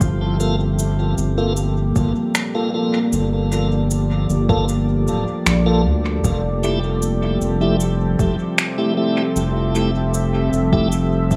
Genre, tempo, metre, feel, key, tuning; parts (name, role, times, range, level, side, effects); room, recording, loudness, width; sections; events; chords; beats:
ambient dub; 77 BPM; 4/4; straight; G dorian; A4 = 441 Hz
deep dark ambient pad; sustained chords; 0.0-11.4 s; F3 to E5; -24 LUFS; equal; chorus, built-in reverb
round analog bass; bass; 0.0-11.4 s; D1 to D2; -22 LUFS; equal; tube saturation
electronic kick drum; drums; 0.0-11.4 s; -23 LUFS; equal; overdrive
electronic shaker and finger snaps; drums; 0.0-11.4 s; -26 LUFS; equal; overdrive, dub echo
tonewheel organ; stabs; 0.4-10.9 s; A3 to A4; -27 LUFS; equal; slow rotary speaker, dub echo
light reverb, digital ambience; echo-heavy mix, studio reverb; -19 LUFS; mono
0.0-11.4 A section
0.0 Gm9; 6.2 Fmaj9
| 0.01 0.79 1.57 2.35 | 3.13 3.91 4.69 5.47 | 6.25 7.03 7.80 8.58 | 9.36 10.14 10.92